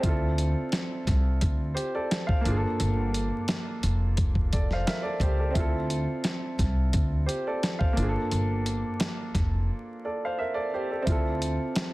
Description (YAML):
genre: hip hop, boom-bap hip-hop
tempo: 87 BPM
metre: 4/4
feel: swing 54% on 16ths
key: D minor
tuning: A4 = 439 Hz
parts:
  - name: warm upright piano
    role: accompaniment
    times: 0.0-11.9 s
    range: Bb3 to F5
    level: -30 LUFS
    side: right 1 dB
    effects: none
  - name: upright bass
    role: bass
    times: 0.0-11.6 s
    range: F1 to D2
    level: -28 LUFS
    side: equal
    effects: none
  - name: dusty soul sampler-style drum kit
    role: drums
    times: 0.0-11.9 s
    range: hi-hat, kick drum, snare drum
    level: -27 LUFS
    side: equal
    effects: none
room: small room ambience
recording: dense, heavily limited modern master, vinyl crackle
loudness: -25 LUFS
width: side -20 dB against mid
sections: 0.0-11.9 A section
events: break 9.7-11.1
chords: 0.0 Dm7; 2.5 Gm7; 5.6 Dm7; 8.0 Gm7; 11.1 Dm7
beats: | 0.04 0.73 1.42 2.10 | 2.79 3.48 4.17 4.86 | 5.55 6.24 6.93 7.62 | 8.31 9.00 9.69 10.38 | 11.07 11.76